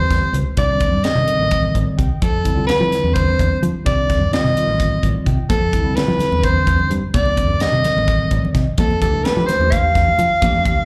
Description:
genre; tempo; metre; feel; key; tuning
electric jazz fusion; 256 BPM (eighths); 7/8; straight; F lydian; A4 = 436 Hz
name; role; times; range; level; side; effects
breathy soprano saxophone; melody; 0.0-10.8 s; A4 to F5; -21 LUFS; equal; slapback echo
tine electric piano; accompaniment; 0.0-10.8 s; D3 to G5; -26 LUFS; equal; slapback echo
fingered electric bass; bass; 0.0-10.8 s; A1 to F3; -22 LUFS; equal; none
crisp fusion drum kit; drums; 0.1-10.8 s; hi-hat, kick drum, snare drum; -24 LUFS; equal; none
congas; percussion; 5.5-10.6 s; none; -29 LUFS; equal; none
room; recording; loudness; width
light reverb; live gig heard through the venue's PA, club reverb; -17 LUFS; mono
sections
0.0-10.8 A section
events
tine electric piano fill 1.5-2.2, 4.8-5.5, 8.1-8.8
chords
0.0 Fmaj7sus2 (rootless); 0.6 Cmadd9; 2.2 Fmaj13; 3.9 Cmadd9; 5.5 Fmaj13; 7.1 Cmadd9; 8.8 Fmaj13

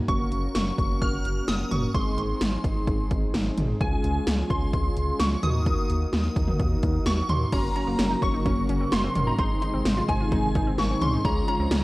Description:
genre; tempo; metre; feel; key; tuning
synth-pop; 129 BPM; 4/4; straight; unclear; A4 = 445 Hz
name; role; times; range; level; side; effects
mellow synth brass; accompaniment; 0.0-11.8 s; Ab3 to Bb4; -31 LUFS; equal; chorus, shimmer reverb
shimmering bell with halo; melody; 0.1-11.8 s; Ab5 to F6; -30 LUFS; equal; ensemble chorus, phaser, shimmer reverb
round analog bass; bass; 0.1-11.8 s; Gb1 to Eb2; -28 LUFS; equal; none
80s electronic pad drums; drums; 0.1-11.8 s; crash cymbal, hi-hat, kick drum, snare drum, toms; -26 LUFS; equal; gated reverb on snare and toms, overdrive
string machine, violas; sustained chords; 7.5-11.8 s; C3 to Gb4; -31 LUFS; equal; ensemble chorus
wide unison pluck; arpeggios; 7.5-11.8 s; Bb3 to F4; -33 LUFS; right 1 dB; digital delay, shimmer reverb
room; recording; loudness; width
light reverb; worn, warbling old tape, cassette tape, warbly pitch drift; -22 LUFS; side -20 dB against mid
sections
0.0-7.5 A section; 7.5-11.8 B section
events
none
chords
0.1 Gb; 1.9 Ab; 3.8 Db; 5.4 Ebm; 7.5 Gb; 9.4 Ab; 11.2 Db

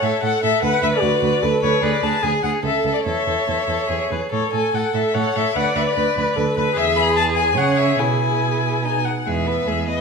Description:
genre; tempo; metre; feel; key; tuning
quick classical-period movement for string quartet; 146 BPM; 3/4; rubato; E major from 6.8 s; A4 = 440 Hz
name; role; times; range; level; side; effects
rich violin; melody; 0.0-10.0 s; B4 to B5; -21 LUFS; left 7 dB; none
clear violin; second line; 0.0-10.0 s; D#4 to B4; -24 LUFS; left 2 dB; none
warm viola; accompaniment; 0.0-10.0 s; G#3 to D5; -24 LUFS; right 4 dB; none
rich cello; bass; 0.0-10.0 s; C#2 to C#3; -24 LUFS; right 6 dB; none
room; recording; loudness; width
wet recital hall reverb, RT60 1.4 s; none; -17 LUFS; side -5 dB against mid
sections
0.0-9.3 A section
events
none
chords
0.0 A; 0.6 Bm/D; 1.8 Bm6/D; 2.6 A; 3.1 A/E; 4.3 A; 5.6 Bm/D; 6.8 E; 7.6 C#m; 8.0 E/B; 9.3 E

